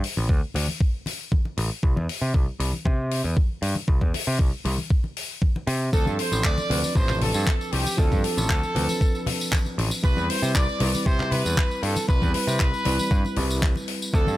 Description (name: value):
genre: nu-disco, nu disco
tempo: 117 BPM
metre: 4/4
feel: straight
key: unclear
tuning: A4 = 440 Hz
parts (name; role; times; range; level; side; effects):
- tight funk drum kit; drums; 0.0-14.4 s; handclaps, hi-hat, tambourine; -30 LUFS; left 3 dB; none
- overdriven picked electric bass; bass; 0.2-14.4 s; A1 to C3; -26 LUFS; equal; none
- congas; percussion; 0.2-14.4 s; none; -32 LUFS; left 2 dB; none
- electronic kick drum; drums; 0.3-14.2 s; none; -21 LUFS; equal; overdrive
- clear trumpet section; melody; 5.9-14.4 s; G4 to D5; -29 LUFS; right 1 dB; tape echo
- tine electric piano; accompaniment; 5.9-14.4 s; F3 to B4; -30 LUFS; right 1 dB; sidechain pumping
room: small room ambience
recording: none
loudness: -21 LUFS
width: side -15 dB against mid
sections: 0.0-14.4 A section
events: none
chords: 0.0 D5; 1.8 N.C.; 5.9 Dm7; 10.0 Cmaj7